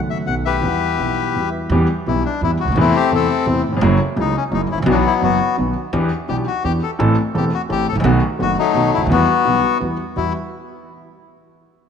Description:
tango; 170 BPM; 3/4; rubato; E minor; A4 = 440 Hz
warm concert grand piano; accompaniment; 0.0-10.3 s; E1 to F#5; -19 LUFS; equal
upright bass; bass; 0.0-10.3 s; E1 to E2; -23 LUFS; right 4 dB
bandoneon; melody; 0.1-10.3 s; F#3 to F#5; -19 LUFS; left 6 dB
moderate plate reverb, RT60 2.9 s; -15 LUFS; side -7 dB against mid
0.0-1.7 A section; 1.7-10.2 A section; 10.2-11.2 B section
0.0 B7; 0.6 Emadd9; 1.7 Em; 2.8 Amadd9/E; 3.8 F#7; 4.9 Bsus4; 5.6 B; 5.9 Em7; 7.0 Am; 8.0 B7; 9.1 Emadd9

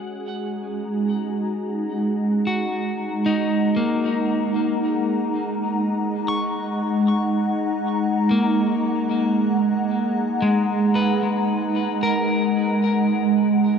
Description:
ambient; free time; A4 = 440 Hz
glassy FM pad; sustained chords; 0.0-13.8 s; G#3 to A#5; -21 LUFS; right 1 dB; ensemble chorus, built-in reverb, phaser
electric guitar at the edge of break-up; arpeggios; 0.0-13.8 s; G#3 to C#6; -25 LUFS; left 2 dB; ping-pong delay
organ-like drone; drone; 0.9-13.8 s; G#3; -38 LUFS; equal
wet huge ambient reverb, RT60 8.5 s; dark, warm production; -19 LUFS; side -6 dB against mid
0.0-13.8 A section
0.0 G#7(no3)

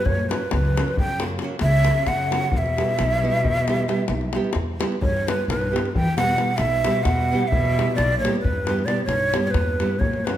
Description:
balkan folk, Balkan wedding band; 265 BPM (eighths); 11/8; straight; E dorian sharp4; A4 = 440 Hz
breathy bright ney; melody; 0.0-10.4 s; B4 to G5; -23 LUFS; right 1 dB
dark cello; second line; 0.0-10.4 s; F#2 to E3; -27 LUFS; left 2 dB
upright bass; bass; 0.1-10.3 s; B1 to F#2; -25 LUFS; equal
davul; percussion; 0.1-10.4 s; -27 LUFS; left 2 dB
nylon-string guitar; accompaniment; 0.3-10.4 s; F#3 to G4; -28 LUFS; right 3 dB
moderate recital hall reverb, RT60 1.4 s; -19 LUFS; side -11 dB against mid
0.0-5.0 A section; 5.0-10.4 A section
0.1 F#; 2.5 Em

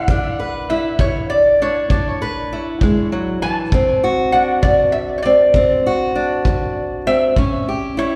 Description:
acoustic country blues, solo or duo; 66 BPM (dotted quarters); 12/8; straight; A4 = 440 Hz
lap resonator guitar; melody; 0.0-8.2 s; C#5 to A5; -20 LUFS; equal; plate reverb, tape echo
fingerpicked old ladder-braced acoustic guitar; accompaniment; 0.0-8.2 s; A2 to B4; -21 LUFS; equal
kick drum; drums; 0.1-7.5 s; -21 LUFS; equal
moderate club reverb, RT60 0.6 s; live gig heard through the venue's PA, recital hall reverb; -17 LUFS; mono
0.0-8.2 A section
0.1 E7(no3); 3.7 D7; 7.4 A7

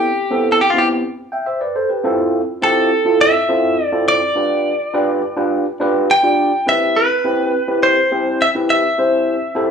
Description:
soul; 104 BPM; 4/4; straight; C major; A4 = 441 Hz
direct-recorded clean electric guitar; melody; 0.0-9.7 s; F4 to G5; -15 LUFS; equal
overdriven tine electric piano; accompaniment; 0.0-9.7 s; B3 to G5; -17 LUFS; equal; phaser
wet large studio reverb, RT60 0.8 s; band playing live in one room; -14 LUFS; side -6 dB against mid
0.0-9.7 A section
0.0 Cmaj7; 2.0 Fmaj7; 4.4 G7; 6.7 Cmaj7

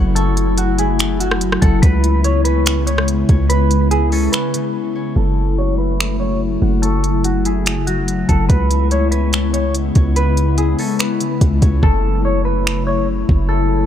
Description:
hip hop, atmospheric cloud-rap; 144 BPM; 4/4; half-time; F# minor; A4 = 440 Hz
glassy FM pad; sustained chords; 0.0-13.9 s; C#3 to E4; -20 LUFS; left 3 dB; ensemble chorus, built-in reverb, sidechain pumping, low-pass filter
concert harp; arpeggios; 0.0-13.9 s; C#3 to C#6; -25 LUFS; left 4 dB; low-pass filter, ping-pong delay
warm 808-style bass; bass; 0.0-13.9 s; F#1 to C#2; -17 LUFS; equal
clean electric guitar; melody; 0.2-13.9 s; F#4 to C#5; -23 LUFS; right 1 dB; phaser, low-pass filter, ping-pong delay
smooth R&B drum kit; drums; 0.2-13.4 s; finger snaps, hi-hat, kick drum, rim click; -17 LUFS; equal
digital ambience; -14 LUFS; side -10 dB against mid
0.0-5.2 A section; 5.2-11.8 B section; 11.8-13.9 C section
break 4.7-5.2; filter sweep 5.2-11.8; hi-hats muted 11.8-13.9
0.0 F#m7; 1.8 C#m7; 5.2 F#m7; 8.5 C#m7; 11.8 F#m7

